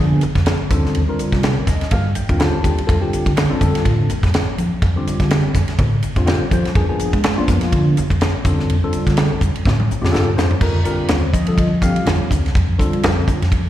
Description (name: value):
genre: electric jazz fusion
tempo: 124 BPM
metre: 4/4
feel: swing 56% on 16ths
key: F mixolydian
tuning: A4 = 441 Hz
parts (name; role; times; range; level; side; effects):
- tine electric piano; accompaniment; 0.0-13.4 s; D3 to A5; -21 LUFS; left 2 dB; phaser, slapback echo
- fingered electric bass; bass; 0.0-13.7 s; C2 to Ab3; -18 LUFS; equal; none
- tight funk drum kit; drums; 0.2-13.6 s; crash cymbal, hi-hat, kick drum, ride cymbal, snare drum, toms; -19 LUFS; equal; none
- congas; percussion; 0.2-13.6 s; none; -26 LUFS; right 1 dB; slapback echo
room: small room ambience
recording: live gig heard through the venue's PA, recital hall reverb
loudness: -15 LUFS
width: side -12 dB against mid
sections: 0.0-10.6 A section; 10.6-13.7 B section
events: tine electric piano fill 1.4-2.9; drum fill 9.7-10.6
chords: 0.0 Bb7b9; 0.7 Ebmaj7; 2.9 Fadd9; 6.8 Bb7b9/F; 8.4 F69; 10.6 F9sus4; 12.6 Fadd9